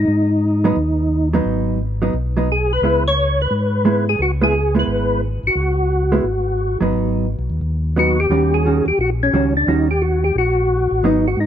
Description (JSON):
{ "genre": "jazz", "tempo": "175 BPM", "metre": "4/4", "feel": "swing 64% on 8ths", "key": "G# minor", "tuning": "A4 = 441 Hz", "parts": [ { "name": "percussive tonewheel organ", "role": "melody", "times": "0.0-11.5 s", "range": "C#4 to C#5", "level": "-18 LUFS", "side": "left 1 dB", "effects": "slow rotary speaker, chorus vibrato" }, { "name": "mellow tonewheel organ", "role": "bass", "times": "0.0-11.5 s", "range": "G1 to G#2", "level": "-20 LUFS", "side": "left 1 dB", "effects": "overdrive, chorus vibrato, slow rotary speaker" }, { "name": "vintage hollow-body jazz guitar", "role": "accompaniment", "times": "0.6-11.2 s", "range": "D#3 to F#4", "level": "-20 LUFS", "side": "right 3 dB", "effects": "none" } ], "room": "light reverb", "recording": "dark, warm production", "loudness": "-15 LUFS", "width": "side -10 dB against mid", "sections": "0.0-11.5 A section", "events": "none", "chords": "0.1 G#m7; 2.8 C#m7; 6.9 G#m7; 8.3 D#7#9" }